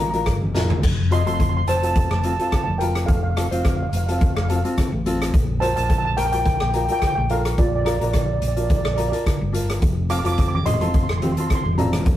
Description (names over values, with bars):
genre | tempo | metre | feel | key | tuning
calypso | 107 BPM | 4/4 | swing 54% on 16ths | unclear | A4 = 440 Hz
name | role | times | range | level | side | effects
steel pan | melody | 0.0-12.0 s | F4 to D6 | -24 LUFS | right 2 dB | none
tenor ukulele | accompaniment | 0.0-12.1 s | C4 to C5 | -27 LUFS | left 2 dB | none
hollow-body short-scale fingered electric bass | bass | 0.0-12.2 s | F1 to Bb1 | -24 LUFS | equal | none
street-band drum kit | drums | 0.1-12.2 s | crash cymbal, hi-hat, kick drum, rim click, snare drum, toms | -22 LUFS | equal | none
congas | percussion | 0.4-0.8, 10.5-12.1 s | none | -25 LUFS | right 1 dB | none
room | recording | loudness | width
moderate small room reverb, RT60 0.5 s | rough rehearsal-room recording | -18 LUFS | side -13 dB against mid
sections
0.8-12.2 A section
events
drum fill 0.5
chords
0.0 Bb6; 0.8 F; 5.3 Bb6; 9.8 F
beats
0.26 | 0.83 1.39 1.95 2.52 | 3.08 3.64 4.21 4.77 | 5.33 5.89 6.45 7.01 | 7.58 8.14 8.70 9.26 | 9.82 10.38 10.94 11.50 | 12.06